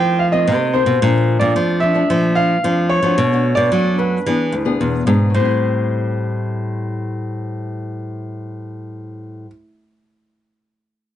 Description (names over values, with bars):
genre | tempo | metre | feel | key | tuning
samba and choro | 111 BPM | 4/4 | straight | A minor | A4 = 435 Hz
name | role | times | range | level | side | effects
warm concert grand piano | melody | 0.0-9.5 s | B4 to G5 | -19 LUFS | equal | plate reverb
nylon-string guitar | accompaniment | 0.0-9.6 s | F2 to G#4 | -23 LUFS | left 4 dB | none
nylon-string guitar | bass | 0.0-9.5 s | D2 to F#3 | -18 LUFS | right 1 dB | none
room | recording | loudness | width
light reverb | nothing above 11.0 kHz | -15 LUFS | side -11 dB against mid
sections
0.0-5.3 A section; 5.3-9.7 B section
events
none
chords
0.0 F7; 1.0 Bbmaj7; 3.2 Bm7; 4.3 E7; 5.3 Am7